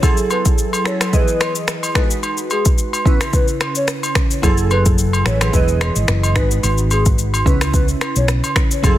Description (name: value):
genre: afrobeats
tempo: 109 BPM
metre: 4/4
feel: swing 55% on 16ths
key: unclear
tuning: A4 = 440 Hz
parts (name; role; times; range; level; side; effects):
- glassy digital keys; accompaniment; 0.0-9.0 s; C#3 to D#5; -22 LUFS; right 2 dB; chorus
- afro-pop drum kit; drums; 0.0-9.0 s; finger snaps, kick drum, rim click, shaker; -17 LUFS; equal; soft clipping on snare
- agogo bells; percussion; 0.0-9.0 s; none; -24 LUFS; equal; none
- hollow clarinet-like synth lead; melody; 0.3-8.3 s; G#4 to C#5; -25 LUFS; left 1 dB; chorus, ping-pong delay
- hollow-body short-scale fingered electric bass; bass; 4.4-9.0 s; E1 to C#2; -17 LUFS; equal; none
room: digital ambience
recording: dense, heavily limited modern master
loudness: -14 LUFS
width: side -14 dB against mid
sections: 0.0-9.0 A section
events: none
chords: 0.0 F#m9; 1.1 Emaj7; 2.0 G#m7; 3.1 C#m7; 4.4 F#m9; 5.5 Emaj7; 6.4 G#m7; 7.5 C#m7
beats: | 0.03 0.58 1.13 1.68 | 2.23 2.78 3.33 3.88 | 4.43 4.98 5.53 6.08 | 6.63 7.18 7.74 8.29 | 8.84